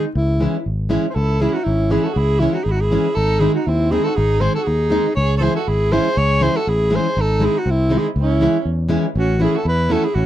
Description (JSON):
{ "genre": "balkan folk, Balkan wedding band", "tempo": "120 BPM", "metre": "2/4", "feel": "swing 56% on 16ths", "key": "C# harmonic minor", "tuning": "A4 = 440 Hz", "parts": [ { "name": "clear alto saxophone", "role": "melody", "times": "0.0-10.3 s", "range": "E4 to C#5", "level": "-20 LUFS", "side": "equal", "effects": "none" }, { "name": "nylon-string guitar", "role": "accompaniment", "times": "0.0-10.1 s", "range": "D#3 to E4", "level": "-20 LUFS", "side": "equal", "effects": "none" }, { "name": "overdriven fingered electric bass", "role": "bass", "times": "0.2-10.3 s", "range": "G#1 to E2", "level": "-18 LUFS", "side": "equal", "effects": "none" }, { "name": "warm violin", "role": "second line", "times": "1.1-10.3 s", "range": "B#3 to A4", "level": "-27 LUFS", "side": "right 11 dB", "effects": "none" } ], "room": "light reverb", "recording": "dry, close 1970s-style studio recording", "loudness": "-15 LUFS", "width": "side -12 dB against mid", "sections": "0.0-1.2 A section; 1.2-9.2 A section; 9.2-10.3 B section", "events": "none", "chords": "0.2 C#m; 3.2 G#; 5.2 C#m; 7.2 G#; 8.2 C#m; 9.2 A" }